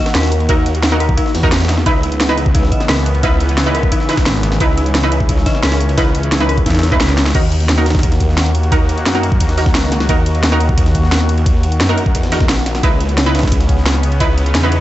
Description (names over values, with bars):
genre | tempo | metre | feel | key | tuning
dark technical drum and bass | 175 BPM | 4/4 | straight | Eb phrygian | A4 = 443 Hz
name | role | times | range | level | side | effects
sweeping resonant pad | sustained chords | 0.0-14.8 s | Db3 to Gb4 | -22 LUFS | left 1 dB | chorus, sidechain pumping
dark detuned synth bell | arpeggios | 0.0-7.1 s | Eb4 to Eb5 | -22 LUFS | left 2 dB | chorus, tremolo, vintage 12-bit sampler grit, sidechain pumping, tape echo
snarling distorted saw bass | bass | 0.1-14.8 s | Bb1 to Gb2 | -16 LUFS | equal | overdrive
breakbeat sampler-style drum kit | drums | 0.1-14.8 s | hi-hat, ride cymbal, snare drum | -26 LUFS | equal | high-pass filter on snare, high-pass filter on cymbals, high-pass filter on hats
drum and bass drum kit | drums | 0.1-14.8 s | crash cymbal, hi-hat, snare drum | -19 LUFS | equal | overdrive
orchestra-hit-like synth stab | stabs | 0.5-14.8 s | Eb4 to Cb5 | -20 LUFS | right 2 dB | built-in reverb, tape echo
electronic kick drum | drums | 0.5-14.3 s | none | -15 LUFS | equal | overdrive
growling FM bass | bass | 4.3-4.6, 6.7-7.3 s | Ab1 to Fb2 | -15 LUFS | equal | none
room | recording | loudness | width
digital ambience | nothing above 8.0 kHz | -12 LUFS | side -14 dB against mid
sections
0.0-7.3 A section; 7.3-14.8 A section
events
drop 0.0-7.3, 7.3-14.8; drum fill 7.1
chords
0.0 Ebm; 1.9 Dbm7; 7.3 Ebm; 12.8 Dbm7